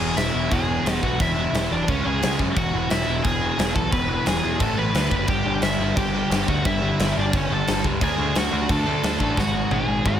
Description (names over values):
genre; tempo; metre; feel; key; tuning
punk rock; 176 BPM; 4/4; straight; unclear; A4 = 439 Hz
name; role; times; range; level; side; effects
high-gain lead guitar; melody; 0.0-10.2 s; C#4 to B5; -26 LUFS; equal; distortion
overdriven semi-hollow guitar; riff; 0.0-10.2 s; E2 to D4; -24 LUFS; left 1 dB; none
growling picked electric bass; bass; 0.0-10.2 s; E1 to F#2; -28 LUFS; equal; overdrive
big rock drum kit; drums; 0.2-10.1 s; crash cymbal, kick drum, snare drum, toms; -25 LUFS; equal; none
room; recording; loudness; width
light reverb; none; -19 LUFS; side -10 dB against mid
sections
0.0-10.2 A section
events
drum fill 9.4-10.2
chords
0.0 E; 1.9 C#5; 2.6 E; 4.6 A5; 4.9 D5; 5.3 G5; 8.0 D; 9.4 G#5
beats
0.17 0.51 0.85 | 1.19 1.53 1.88 2.22 | 2.56 2.90 3.24 3.58 | 3.92 4.26 4.61 4.95 | 5.29 5.63 5.97 6.31 | 6.65 6.99 7.33 7.67 | 8.01 8.35 8.69 9.03 | 9.37 9.71 10.05